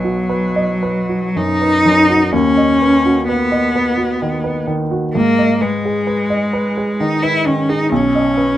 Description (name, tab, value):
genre	classical, romantic duo for cello and grand piano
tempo	54-67 BPM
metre	3/4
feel	rubato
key	B major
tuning	A4 = 437 Hz
part	clear cello	melody	0.0-8.6 s	F#3 to E4	-15 LUFS	left 1 dB	none
part	warm baby grand piano	accompaniment	0.0-8.6 s	B1 to D#5	-18 LUFS	right 1 dB	none
room	light reverb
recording	dark, warm production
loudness	-13 LUFS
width	side -13 dB against mid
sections	0.0-8.6 A section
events	none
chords	0.0 B; 2.3 B/D#; 5.1 G#m; 7.9 G#m/B (rootless)